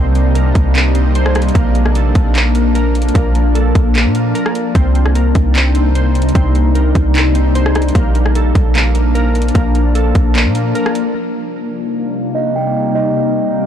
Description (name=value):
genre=hip hop, atmospheric cloud-rap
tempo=150 BPM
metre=4/4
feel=half-time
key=C dorian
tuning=A4 = 441 Hz
part: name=shimmering ambient pad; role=sustained chords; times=0.0-13.7 s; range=C3 to Eb4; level=-17 LUFS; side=left 2 dB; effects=chorus, built-in reverb, sidechain pumping, low-pass filter
part: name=glassy digital keys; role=arpeggios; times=0.0-11.2 s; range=Bb3 to C5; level=-23 LUFS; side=right 2 dB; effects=chorus, low-pass filter, ping-pong delay
part: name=clean 808-style bass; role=bass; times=0.0-10.7 s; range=Bb1 to Bb2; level=-13 LUFS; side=equal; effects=none
part: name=trap drum kit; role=drums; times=0.2-11.0 s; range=handclaps, hi-hat, kick drum, rim click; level=-17 LUFS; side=equal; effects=overdrive
part: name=kalimba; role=melody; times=12.3-13.5 s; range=Eb5 to G5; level=-21 LUFS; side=right 3 dB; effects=low-pass filter, ping-pong delay
room=little or no reverb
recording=blown-out, overdriven recording, overdrive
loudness=-11 LUFS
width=side -9 dB against mid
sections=0.0-11.2 A section; 11.2-13.7 B section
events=none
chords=0.0 Cm7; 1.6 Bbmaj7; 4.8 Cm7; 8.0 Bbmaj7; 11.2 Cm7